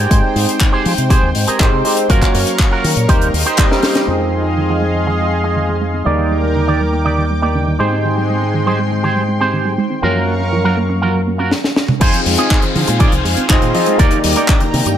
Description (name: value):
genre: nu-disco, nu disco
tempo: 121 BPM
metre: 4/4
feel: straight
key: F dorian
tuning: A4 = 440 Hz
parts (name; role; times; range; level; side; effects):
- lush unison pad; sustained chords; 0.0-15.0 s; Ab3 to D6; -23 LUFS; equal; chorus, sidechain pumping
- electric guitar with an envelope filter; riff; 0.0-14.9 s; Eb4 to Eb5; -21 LUFS; right 3 dB; analog chorus, low-pass filter, tape echo
- fingered electric bass with an envelope filter; bass; 0.0-14.9 s; F1 to F3; -18 LUFS; equal; tube saturation
- barky tine electric piano; accompaniment; 0.1-15.0 s; F3 to G5; -19 LUFS; equal; lush chorus, sidechain pumping, tape echo
- crisp fusion drum kit; drums; 0.1-4.1, 11.5-15.0 s; crash cymbal, handclaps, hi-hat, snare drum, toms; -19 LUFS; left 1 dB; none
- electronic kick drum; drums; 0.1-3.7, 12.0-14.6 s; none; -13 LUFS; equal; none
- soft round pluck; arpeggios; 4.1-14.9 s; D3 to Eb4; -22 LUFS; right 3 dB; chorus, sidechain pumping, tape echo
- downlifter; sound effects; 12.0-15.0 s; none; -24 LUFS; left 5 dB; none
room: light reverb, studio reverb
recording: none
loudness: -12 LUFS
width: side -10 dB against mid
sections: 0.0-4.1 A section; 4.1-12.0 B section; 12.0-15.0 C section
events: filter sweep on tine electric piano 0.0-4.1; drum fill 3.7-4.1, 11.5-12.0; filter sweep on clean electric guitar 4.1-12.0; filter sweep on synth arpeggio sound 4.1-12.0; drop 12.0-15.0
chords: 0.0 Abmaj7; 2.1 Gbmaj7; 3.1 Eb6; 4.1 Fm7; 6.1 Ebmaj7; 7.8 Abmaj7; 10.0 Gbmaj7; 12.0 Fm7; 14.0 Ebmaj7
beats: | 0.11 0.61 1.10 1.60 | 2.09 2.59 3.08 3.58 | 4.08 4.57 5.07 5.57 | 6.06 6.56 7.05 7.55 | 8.04 8.54 9.04 9.53 | 10.03 10.52 11.02 11.52 | 12.01 12.51 13.00 13.50 | 13.99 14.49